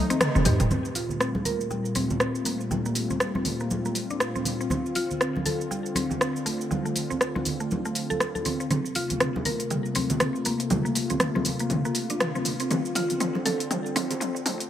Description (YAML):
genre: afro house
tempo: 120 BPM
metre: 4/4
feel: swing 58% on 16ths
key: unclear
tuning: A4 = 440 Hz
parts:
  - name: warm analog pad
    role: sustained chords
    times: 0.0-14.7 s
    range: Bb2 to F4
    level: -31 LUFS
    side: left 2 dB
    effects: chorus
  - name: warm 808-style bass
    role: bass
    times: 0.0-0.7, 8.7-14.7 s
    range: Eb1 to G2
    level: -28 LUFS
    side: equal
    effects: high-pass filter
  - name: mallet-like synth pluck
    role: arpeggios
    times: 0.1-14.6 s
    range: G3 to Bb4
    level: -30 LUFS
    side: equal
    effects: chorus, digital delay
  - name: deep house drum kit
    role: drums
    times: 0.1-14.7 s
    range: hi-hat, rim click, shaker, toms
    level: -27 LUFS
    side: equal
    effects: overdrive
  - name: congas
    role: percussion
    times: 0.1-14.6 s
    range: none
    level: -32 LUFS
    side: right 2 dB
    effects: none
room: moderate plate reverb, RT60 3.0 s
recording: high-pass filter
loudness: -24 LUFS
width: side -10 dB against mid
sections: 0.7-8.7 A section; 8.7-14.7 B section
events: drum fill 0.0-0.7, 8.7-14.7; band accent 0.2; filter sweep on synth pluck 0.7-8.7; filter sweep on analog synth pad 0.7-8.7, 8.7-14.7; build-up 8.7-14.7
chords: 0.0 F7; 0.7 Gm11; 4.7 Dm7; 8.7 Gm11; 12.7 Dm7